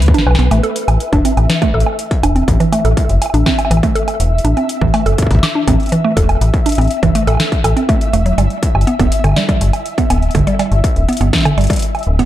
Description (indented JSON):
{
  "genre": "IDM",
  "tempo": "122 BPM",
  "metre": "4/4",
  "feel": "straight",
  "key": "unclear",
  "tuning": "A4 = 440 Hz",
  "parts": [
    { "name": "metallic FM bass", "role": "bass", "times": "0.0-12.3 s", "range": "D1 to D2", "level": "-13 LUFS", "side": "equal", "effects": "tube saturation" },
    { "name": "booming analog drum machine", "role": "drums", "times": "0.0-12.3 s", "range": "hi-hat, snare drum, woodblock", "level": "-20 LUFS", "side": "right 2 dB", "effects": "tape echo" },
    { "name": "flickering grainy texture", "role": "texture", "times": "0.0-12.3 s", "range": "B4 to E5", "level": "-23 LUFS", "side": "left 2 dB", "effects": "built-in reverb" },
    { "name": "mallet-like synth pluck", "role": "arpeggios", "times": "0.1-12.2 s", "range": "D3 to B4", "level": "-17 LUFS", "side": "right 2 dB", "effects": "chorus, tape echo" },
    { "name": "electronic kick drum", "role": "drums", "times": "0.1-12.3 s", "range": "none", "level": "-16 LUFS", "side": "equal", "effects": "distortion" }
  ],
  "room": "light reverb",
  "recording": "dark, warm production",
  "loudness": "-11 LUFS",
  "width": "side -13 dB against mid",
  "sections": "0.0-12.3 A section",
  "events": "filter sweep on synth arpeggio sound 0.0-12.3; drum fill 0.0-0.5",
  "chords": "0.0 Bm; 0.5 A5; 8.4 G"
}